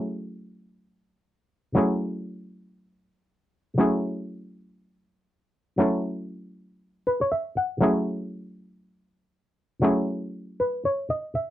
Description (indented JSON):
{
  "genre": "disco",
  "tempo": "119 BPM",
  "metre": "4/4",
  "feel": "swing 56% on 16ths",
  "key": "F# minor",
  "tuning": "A4 = 439 Hz",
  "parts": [
    { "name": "muted clav", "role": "solo", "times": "0.0-11.5 s", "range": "F#3 to F#5", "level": "-24 LUFS", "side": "equal", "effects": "auto-wah" }
  ],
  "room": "light reverb",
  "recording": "dry, close 1970s-style studio recording",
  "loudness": "-24 LUFS",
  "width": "side -13 dB against mid",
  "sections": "0.0-11.5 A section",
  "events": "clav fill 6.8-7.8, 10.3-11.5",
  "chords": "0.0 F#m9"
}